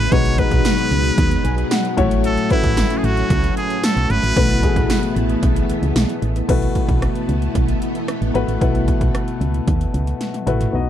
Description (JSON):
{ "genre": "1980s-style pop", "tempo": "113 BPM", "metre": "4/4", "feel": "straight", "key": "B mixolydian", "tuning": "A4 = 440 Hz", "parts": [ { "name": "trumpet with straight mute", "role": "melody", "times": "0.0-5.2 s", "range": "E4 to C#5", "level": "-23 LUFS", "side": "right 1 dB", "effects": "tape echo" }, { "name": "warm baby grand piano", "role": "accompaniment", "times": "0.0-10.9 s", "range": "A2 to G#5", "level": "-22 LUFS", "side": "left 6 dB", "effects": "none" }, { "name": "string machine, full ensemble", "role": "sustained chords", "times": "0.0-10.7 s", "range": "E3 to C#4", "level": "-25 LUFS", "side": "right 2 dB", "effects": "ensemble chorus" }, { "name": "solid FM bass", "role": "bass", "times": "0.0-10.9 s", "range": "G#1 to D#2", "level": "-20 LUFS", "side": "right 1 dB", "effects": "none" }, { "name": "80s electronic pad drums", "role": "drums", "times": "0.1-10.7 s", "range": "crash cymbal, hi-hat, kick drum, rim click, snare drum, tambourine, toms", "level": "-20 LUFS", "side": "right 1 dB", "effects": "gated reverb on snare and toms, overdrive" }, { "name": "tambourine", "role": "percussion", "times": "0.7-6.1 s", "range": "none", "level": "-36 LUFS", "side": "right 21 dB", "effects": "none" } ], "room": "little or no reverb", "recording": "dry, close 1970s-style studio recording", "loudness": "-16 LUFS", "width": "side -10 dB against mid", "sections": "0.0-6.5 A section; 6.5-10.7 B section", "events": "grand piano fill 1.2-2.2; drum fill 10.2-10.7", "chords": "0.1 G#m7/B; 2.0 A6; 4.4 B7sus4" }